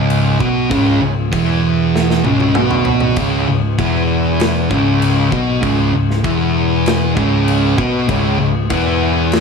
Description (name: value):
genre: stoner and doom metal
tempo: 98 BPM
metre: 4/4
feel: straight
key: C# minor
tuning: A4 = 440 Hz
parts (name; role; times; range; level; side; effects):
- thick fuzz guitar; riff; 0.0-9.4 s; C#2 to B3; -14 LUFS; equal; distortion
- overdriven picked electric bass; bass; 0.0-9.4 s; C#1 to B1; -19 LUFS; equal; tube saturation
- big rock drum kit; drums; 0.1-9.4 s; crash cymbal, kick drum, snare drum, toms; -21 LUFS; left 1 dB; none
room: light reverb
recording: none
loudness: -13 LUFS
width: side -5 dB against mid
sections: 0.0-9.4 A section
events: drum fill 1.9-3.2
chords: 0.0 C#m